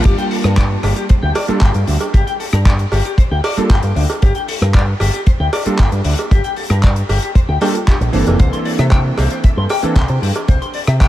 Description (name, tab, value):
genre	nu-disco, nu disco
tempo	115 BPM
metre	4/4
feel	straight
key	G dorian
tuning	A4 = 441 Hz
part	warm electric grand piano	accompaniment	0.0-10.0 s	E3 to A5	-21 LUFS	right 2 dB	ensemble chorus, sidechain pumping, analog delay
part	clean electric guitar	riff	0.0-11.1 s	D4 to C6	-23 LUFS	left 4 dB	wide subtle chorus, analog delay
part	picked electric bass with an envelope filter	bass	0.1-11.1 s	F1 to C3	-16 LUFS	equal	none
part	damped 70s drum kit	drums	0.1-11.1 s	crash cymbal, handclaps, hi-hat, rim click	-25 LUFS	left 1 dB	studio reverb
part	kick drum	drums	0.1-11.1 s	none	-12 LUFS	equal	studio reverb
part	cowbell	percussion	0.8-10.5 s	none	-26 LUFS	right 2 dB	none
room	light reverb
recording	none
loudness	-12 LUFS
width	side -14 dB against mid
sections	0.0-11.1 A section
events	none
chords	0.0 Gm9; 8.4 C13